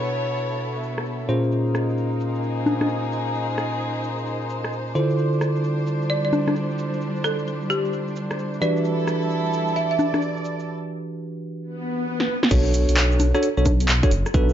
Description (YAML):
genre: UK garage, two-step garage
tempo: 131 BPM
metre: 4/4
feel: swing 65% on 16ths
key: unclear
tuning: A4 = 440 Hz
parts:
  - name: bell-like tine electric piano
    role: stabs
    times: 0.0-14.5 s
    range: A#2 to C#5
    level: -24 LUFS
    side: right 1 dB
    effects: ping-pong delay
  - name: warm studio string section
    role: texture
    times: 0.0-10.7 s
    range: G3 to D5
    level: -28 LUFS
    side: equal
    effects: sidechain pumping
  - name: punchy analog drum machine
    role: drums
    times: 0.1-14.5 s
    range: cabasa, congas, crash cymbal, handclaps, hi-hat, rim click, snare drum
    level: -24 LUFS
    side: left 1 dB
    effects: overdrive, low-pass filter on hats, low-pass filter on perc, low-pass filter on snare, low-pass filter on cymbals, low-pass filter on room
  - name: folk marimba with hard mallets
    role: melody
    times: 6.1-10.0 s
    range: G4 to E5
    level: -26 LUFS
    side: right 1 dB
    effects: ping-pong delay
  - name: swell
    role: sound effects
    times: 11.7-12.5 s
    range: none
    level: -27 LUFS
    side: left 2 dB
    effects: none
  - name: dark detuned saw bass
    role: bass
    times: 12.5-14.5 s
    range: F#1 to B1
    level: -20 LUFS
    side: equal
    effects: none
  - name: electronic kick drum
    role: drums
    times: 12.5-14.5 s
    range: none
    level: -20 LUFS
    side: equal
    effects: none
room: moderate digital room reverb, RT60 1.2 s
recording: dark, warm production, nothing above 7.5 kHz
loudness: -20 LUFS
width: side -10 dB against mid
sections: 0.0-12.5 A section; 12.5-14.5 B section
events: break 10.7-12.5; swell 11.7-12.5; drum fill 12.2-12.5; drop 12.5-14.5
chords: 0.0 Bm7; 1.3 A#m7; 5.0 Dm7; 8.6 Em7; 12.5 Bm7